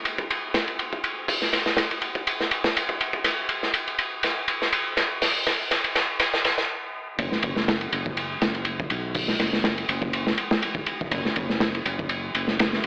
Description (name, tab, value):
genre	breakbeat, breaks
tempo	122 BPM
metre	4/4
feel	swing 54% on 16ths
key	unclear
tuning	A4 = 440 Hz
part	crunchy breakbeat drum kit	drums	0.1-12.9 s	hi-hat, kick drum, ride cymbal, snare drum	-25 LUFS	equal	high-pass filter on kick, high-pass filter on cymbals, high-pass filter on hats, high-pass filter on snare, high-pass filter on room
part	fingered electric bass	bass	7.2-12.9 s	F#1 to B1	-35 LUFS	equal	none
room	light reverb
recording	dry, gritty hardware recording, vinyl crackle, high-pass filter, AM radio sound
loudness	-25 LUFS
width	mono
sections	0.0-7.2 A section; 7.2-12.9 B section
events	build-up 0.0-7.2; drum fill 3.3-6.7; stop 6.7-7.2; drop 7.2-12.9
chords	none